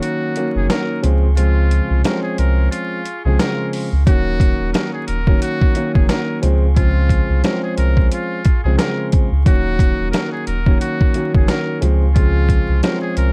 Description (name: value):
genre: hip hop, boom-bap hip-hop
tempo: 89 BPM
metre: 4/4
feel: swing 57% on 16ths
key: unclear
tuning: A4 = 442 Hz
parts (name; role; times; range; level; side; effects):
- trumpet with metal mute; melody; 0.0-13.3 s; F4 to Bb4; -29 LUFS; equal; high-pass filter, low-pass filter, digital delay
- dark baby grand piano; accompaniment; 0.0-13.3 s; Db3 to Db4; -24 LUFS; equal; high-pass filter, low-pass filter
- tonewheel organ; sustained chords; 0.0-13.3 s; Ab4 to Eb6; -38 LUFS; equal; stopped rotary speaker, high-pass filter, low-pass filter
- boom bap sampler-style drum kit; drums; 0.0-13.3 s; hi-hat, kick drum, snare drum; -18 LUFS; equal; none
- warm sub bass; bass; 0.6-13.3 s; Eb1 to Db2; -18 LUFS; equal; none
room: little or no reverb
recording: dark, warm production, vinyl crackle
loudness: -17 LUFS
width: mono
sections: 0.0-13.3 A section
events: break 0.0-4.1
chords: 0.0 Ebm7; 1.0 Dbmaj7; 4.1 Ebm7; 6.4 Dbmaj7; 9.5 Ebm7; 11.8 Dbmaj7